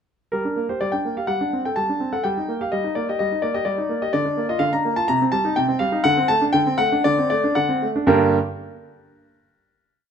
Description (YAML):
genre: classical-period piano sonatina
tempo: 114-128 BPM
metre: 4/4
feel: straight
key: G minor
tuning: A4 = 439 Hz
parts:
  - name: clear concert grand piano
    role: solo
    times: 0.3-8.4 s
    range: G2 to Bb5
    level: -18 LUFS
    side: equal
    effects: none
room: moderate recital hall reverb, RT60 1.5 s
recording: close, detailed microphones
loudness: -19 LUFS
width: side -7 dB against mid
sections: 0.3-8.1 A section; 8.1-10.1 final chord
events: slowing down 3.2-8.1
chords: 0.3 Gm; 1.3 D5/G; 2.2 Eb/G; 4.1 Bb/D; 5.1 Cm; 6.0 D7; 8.1 Gm